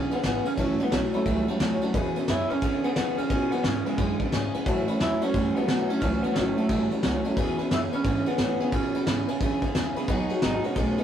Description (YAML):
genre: rockabilly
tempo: 177 BPM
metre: 4/4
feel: swing 64% on 8ths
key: E major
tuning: A4 = 440 Hz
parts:
  - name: electric guitar through a small old amp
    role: melody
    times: 0.0-11.0 s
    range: G#3 to E4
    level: -28 LUFS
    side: right 2 dB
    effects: none
  - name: honky-tonk upright piano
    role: accompaniment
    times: 0.0-11.0 s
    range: B4 to B5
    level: -37 LUFS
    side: left 1 dB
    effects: none
  - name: picked steel-string acoustic guitar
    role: accompaniment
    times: 0.0-11.0 s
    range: A2 to G#4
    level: -31 LUFS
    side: equal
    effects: none
  - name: electric guitar through a small old amp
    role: riff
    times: 0.0-11.0 s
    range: E2 to A3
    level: -29 LUFS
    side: equal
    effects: none
  - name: upright bass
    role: bass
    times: 0.0-11.0 s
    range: G#1 to B2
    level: -34 LUFS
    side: equal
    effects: none
  - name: soft brush drum kit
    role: drums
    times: 0.1-11.0 s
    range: kick drum, ride cymbal, snare drum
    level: -29 LUFS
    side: equal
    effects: none
room: light reverb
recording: rough rehearsal-room recording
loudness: -23 LUFS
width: side -9 dB against mid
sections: 0.0-11.0 A section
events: none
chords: 0.0 E6; 0.6 A6; 1.9 E6; 4.7 A6; 7.4 E6; 10.1 B6